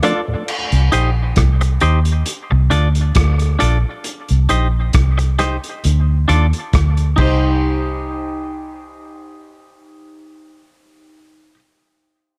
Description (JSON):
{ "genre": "dub reggae", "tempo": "67 BPM", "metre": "4/4", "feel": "swing 55% on 16ths", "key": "C dorian", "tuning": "A4 = 441 Hz", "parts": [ { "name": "semi-hollow electric guitar", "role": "accompaniment", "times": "0.0-11.6 s", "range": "D4 to Eb5", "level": "-24 LUFS", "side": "equal", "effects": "dub echo" }, { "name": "dark upright piano", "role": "stabs", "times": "0.0-0.4, 7.2-11.5 s", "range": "Eb4 to D5", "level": "-27 LUFS", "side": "equal", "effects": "dub echo" }, { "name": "vintage drum kit", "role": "drums", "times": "0.0-7.4 s", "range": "crash cymbal, hi-hat, kick drum, rim click", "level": "-23 LUFS", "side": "equal", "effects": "none" }, { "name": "vintage muted fingered electric bass", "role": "bass", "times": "0.7-11.5 s", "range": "Bb1 to Eb2", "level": "-17 LUFS", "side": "equal", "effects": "none" } ], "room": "light reverb, studio ambience", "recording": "none", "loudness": "-16 LUFS", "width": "mono", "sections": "0.5-7.6 A section; 7.6-11.2 B section", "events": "none", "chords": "0.5 Cm; 2.3 Dm; 4.1 Cm; 5.8 Dm; 7.2 Cm" }